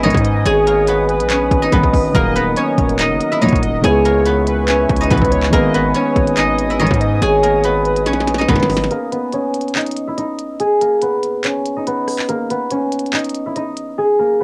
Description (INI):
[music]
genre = hip hop, trap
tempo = 142 BPM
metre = 4/4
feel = half-time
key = unclear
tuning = A4 = 440 Hz
[part]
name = guzheng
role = melody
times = 0.0-14.4 s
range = Bb3 to Ab5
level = -19 LUFS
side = equal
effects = low-pass filter, cassette tape
[part]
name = warm velvety synth lead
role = second line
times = 0.0-8.9 s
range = Cb5 to Eb5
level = -25 LUFS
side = equal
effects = chorus, cassette tape, tape echo
[part]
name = soft electric-piano-like synth keys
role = accompaniment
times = 0.0-8.9 s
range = Db3 to Cb5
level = -25 LUFS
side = equal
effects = chorus, low-pass filter, cassette tape
[part]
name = warbly tape-like pad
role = sustained chords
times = 0.0-8.9 s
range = Bb4 to Eb6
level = -28 LUFS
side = equal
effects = chorus, built-in reverb, cassette tape
[part]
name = dark symphonic string section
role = stabs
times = 0.0-8.7 s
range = Cb2 to Gb3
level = -21 LUFS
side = equal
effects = cassette tape
[part]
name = distorted 808-style bass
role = bass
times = 0.0-8.9 s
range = Eb1 to Ab2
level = -22 LUFS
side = equal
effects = distortion
[part]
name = glitchy drum kit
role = drums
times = 0.0-13.9 s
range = handclaps, hi-hat, kick drum, rim click, snare drum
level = -22 LUFS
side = equal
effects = cassette tape
[sound]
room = little or no reverb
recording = home recording on cassette, faint mains hum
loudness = -16 LUFS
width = mono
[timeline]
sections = 0.0-8.9 A section; 8.9-14.4 B section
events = drum fill 8.1-8.9; break 8.9-14.4; hi-hats muted 14.0-14.4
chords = 0.0 Abm; 2.1 Ebm; 3.8 Dbm7; 5.5 Abm; 8.9 Eb5; 10.6 Db5; 12.3 Abm